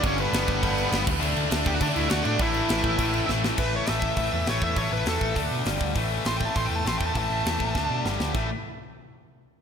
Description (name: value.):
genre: punk rock.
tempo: 202 BPM.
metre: 4/4.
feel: straight.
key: unclear.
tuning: A4 = 443 Hz.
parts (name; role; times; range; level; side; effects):
smooth overdriven lead guitar; melody; 0.0-8.0 s; B3 to C6; -29 LUFS; right 2 dB; slapback echo, digital delay.
tight distorted guitar; riff; 0.0-8.5 s; G2 to D4; -29 LUFS; left 10 dB; distortion.
tight distorted guitar; riff; 0.0-8.5 s; G2 to D4; -33 LUFS; right 12 dB; distortion.
tight distorted guitar; riff; 0.0-3.6 s; G2 to D4; -33 LUFS; right 2 dB; distortion.
overdriven picked electric bass; bass; 0.0-8.5 s; G1 to D3; -29 LUFS; right 1 dB; none.
tight metal drum kit; drums; 0.0-8.4 s; crash cymbal, hi-hat, kick drum, snare drum; -29 LUFS; equal; none.
room: moderate lush hall reverb, RT60 1.8 s, small room ambience.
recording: big arena sound.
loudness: -22 LUFS.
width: side -7 dB against mid.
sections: 0.0-3.6 A section; 3.6-8.3 B section; 8.3-9.5 C section.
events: drum fill 3.3, 7.8-8.3; lead electric guitar solo 3.6-8.3.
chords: 0.0 G; 1.1 D; 2.4 A5; 5.4 D5; 5.7 G5; 6.0 A5; 7.8 D5; 8.1 G5; 8.3 A5.